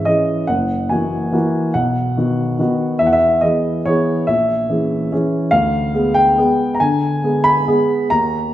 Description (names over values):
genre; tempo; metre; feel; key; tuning
classical, piano waltz; 142 BPM; 3/4; uneven beats, rubato; unclear; A4 = 440 Hz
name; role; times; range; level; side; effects
warm upright piano; solo; 0.0-8.5 s; F#1 to B5; -14 LUFS; equal; none
room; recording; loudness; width
wet recital hall reverb, RT60 1.4 s; recorded in a church or concert hall; -14 LUFS; side -13 dB against mid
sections
0.0-8.5 A section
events
none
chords
0.5 F#7; 1.8 B; 3.0 Emaj7; 4.3 A#m7b5; 5.5 Ddim7